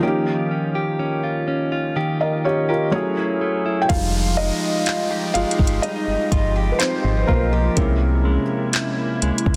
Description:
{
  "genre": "contemporary R&B",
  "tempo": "62 BPM",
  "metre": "4/4",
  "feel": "straight",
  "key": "F minor",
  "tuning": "A4 = 440 Hz",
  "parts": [
    { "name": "felt-muted upright piano", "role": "accompaniment", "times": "0.0-9.6 s", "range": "F3 to G5", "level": "-25 LUFS", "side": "equal", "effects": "none" },
    { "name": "direct-recorded clean electric guitar", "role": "arpeggios", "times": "0.0-9.6 s", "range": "C3 to G4", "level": "-26 LUFS", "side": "equal", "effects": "tape echo" },
    { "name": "glassy FM pad", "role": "sustained chords", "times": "4.8-9.6 s", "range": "F3 to G4", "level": "-31 LUFS", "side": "equal", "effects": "ensemble chorus, built-in reverb" },
    { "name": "solid FM bass", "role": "bass", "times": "3.9-9.6 s", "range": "F1 to Db2", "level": "-23 LUFS", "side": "equal", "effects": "none" },
    { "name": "smooth R&B drum kit", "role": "drums", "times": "3.9-9.6 s", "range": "handclaps, hi-hat, kick drum", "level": "-24 LUFS", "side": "equal", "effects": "soft clipping on snare" },
    { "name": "downlifter", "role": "sound effects", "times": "3.9-9.6 s", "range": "none", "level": "-35 LUFS", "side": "equal", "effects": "none" }
  ],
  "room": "light reverb",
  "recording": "dense, heavily limited modern master",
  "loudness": "-21 LUFS",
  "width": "mono",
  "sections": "0.0-3.9 A section; 3.9-9.6 B section",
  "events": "break 0.0-3.9; felt piano solo 3.9-9.6",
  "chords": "0.0 Eb9; 2.9 Gbm9; 3.9 Fm9; 7.8 C7b9b13",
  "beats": "| 0.03 0.99 1.96 2.93 | 3.90 4.87 5.83 6.80 | 7.77 8.74"
}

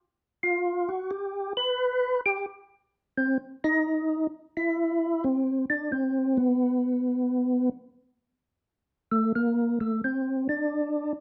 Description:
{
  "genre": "jazz",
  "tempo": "88 BPM",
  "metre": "4/4",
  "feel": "swing 67% on 8ths",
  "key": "unclear",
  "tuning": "A4 = 444 Hz",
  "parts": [
    { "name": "percussive tonewheel organ", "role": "solo", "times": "0.4-11.1 s", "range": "A3 to B4", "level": "-27 LUFS", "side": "equal", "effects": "chorus vibrato, slow rotary speaker" }
  ],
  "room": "light reverb",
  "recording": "dark, warm production",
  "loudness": "-27 LUFS",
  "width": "mono",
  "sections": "0.0-7.9 A section; 7.9-11.2 B section",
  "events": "tonewheel organ solo 7.9-11.2",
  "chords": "none",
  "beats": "0.42 1.10 1.78 | 2.47 3.15 3.83 4.52 | 5.20 5.89 6.58 7.26 | 7.95 8.63 9.32 10.01 | 10.70"
}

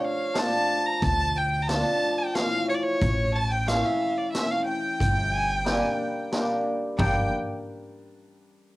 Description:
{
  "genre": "klezmer",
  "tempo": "90 BPM",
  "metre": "3/4",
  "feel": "straight",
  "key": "G dorian sharp4",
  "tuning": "A4 = 439 Hz",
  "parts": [
    { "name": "clear violin", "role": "melody", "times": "0.0-7.3 s", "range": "C#5 to Bb5", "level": "-29 LUFS", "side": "equal", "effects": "cassette tape" },
    { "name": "warm violin", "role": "second line", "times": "0.0-7.3 s", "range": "C#5 to A5", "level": "-30 LUFS", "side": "right 2 dB", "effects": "cassette tape" },
    { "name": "cimbalom", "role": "accompaniment", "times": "0.0-7.3 s", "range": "E3 to D4", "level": "-29 LUFS", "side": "left 1 dB", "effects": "cassette tape" },
    { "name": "street-band drum kit", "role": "drums", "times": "0.4-7.1 s", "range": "hi-hat, kick drum, ride cymbal, snare drum, toms", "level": "-29 LUFS", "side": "equal", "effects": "none" },
    { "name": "upright bass", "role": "bass", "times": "1.0-7.3 s", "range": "G1 to D2", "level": "-28 LUFS", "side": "equal", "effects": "none" }
  ],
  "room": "moderate booth ambience, RT60 0.2 s",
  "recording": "home recording on cassette",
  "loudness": "-23 LUFS",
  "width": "side -19 dB against mid",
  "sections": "0.0-7.0 A section; 7.0-8.8 B section",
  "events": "none",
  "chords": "0.0 Dm; 3.0 A; 5.0 Gm",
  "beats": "0.36 | 1.02 1.68 2.35 | 3.01 3.67 4.34 | 5.00 5.66 6.32 | 6.99"
}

